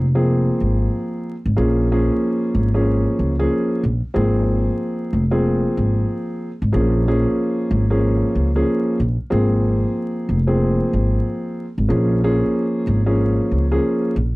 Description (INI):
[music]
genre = hip hop, boom-bap hip-hop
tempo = 93 BPM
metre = 4/4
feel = swing 62% on 16ths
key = Bb minor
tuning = A4 = 440 Hz
[part]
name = dark grand piano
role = accompaniment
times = 0.0-14.1 s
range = F3 to Ab4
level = -20 LUFS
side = equal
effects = cassette tape, high-pass filter, low-pass filter
[part]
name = upright bass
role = bass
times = 0.0-14.3 s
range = F1 to Db2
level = -18 LUFS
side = equal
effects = transformer saturation
[sound]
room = little or no reverb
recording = dry, gritty hardware recording, vinyl crackle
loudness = -17 LUFS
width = side -21 dB against mid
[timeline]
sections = 0.0-14.4 A section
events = none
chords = 0.0 Ab69; 1.6 Bbm7; 4.2 Ab69; 6.7 Bbm7; 9.3 Ab69; 11.9 Bbm7